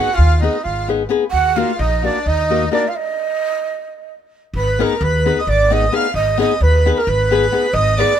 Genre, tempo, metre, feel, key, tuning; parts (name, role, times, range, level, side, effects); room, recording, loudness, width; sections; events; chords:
balkan folk, Balkan wedding band; 261 BPM (eighths); 7/8; straight; Ab dorian sharp4; A4 = 440 Hz
breathy mellow ney; melody; 0.0-8.2 s; Bb4 to Gb5; -19 LUFS; right 5 dB
accordion; second line; 0.0-8.2 s; D4 to F5; -22 LUFS; equal
nylon-string guitar; accompaniment; 0.0-8.1 s; Bb3 to Cb5; -20 LUFS; left 8 dB
upright bass; bass; 0.2-8.0 s; Ab1 to Eb2; -17 LUFS; equal
little or no reverb; minimal, uncompressed stereo recording; -14 LUFS; side -9 dB against mid
0.0-4.5 A section; 4.5-8.2 B section
stop 2.9-4.5
0.0 Abm; 1.3 Ebm; 2.9 N.C.; 4.5 Abm